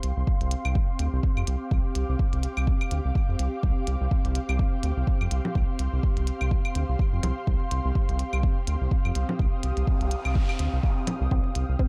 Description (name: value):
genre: minimal techno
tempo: 125 BPM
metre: 4/4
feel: swing 57% on 16ths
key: C minor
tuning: A4 = 440 Hz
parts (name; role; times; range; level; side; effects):
- round analog bass; bass; 0.0-11.8 s; C2 to F2; -28 LUFS; equal; sidechain pumping
- electronic hi-hat; drums; 0.0-11.7 s; none; -40 LUFS; equal; none
- ethereal airy pad; texture; 0.0-11.9 s; C4 to Eb6; -36 LUFS; equal; ensemble chorus, built-in reverb, sidechain pumping
- electronic kick drum; drums; 0.3-11.9 s; none; -27 LUFS; equal; none
- claves and congas; percussion; 0.7-11.2 s; none; -36 LUFS; equal; overdrive, delay
- noise sweep; sound effects; 9.8-11.3 s; none; -43 LUFS; equal; none
- resonant blip pluck; riff; 11.3-11.8 s; C4; -36 LUFS; equal; phaser, sidechain pumping
room: digital ambience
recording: dark, warm production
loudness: -26 LUFS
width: mono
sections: 0.0-11.9 A section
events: noise sweep 9.8-11.3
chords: 0.0 Csus4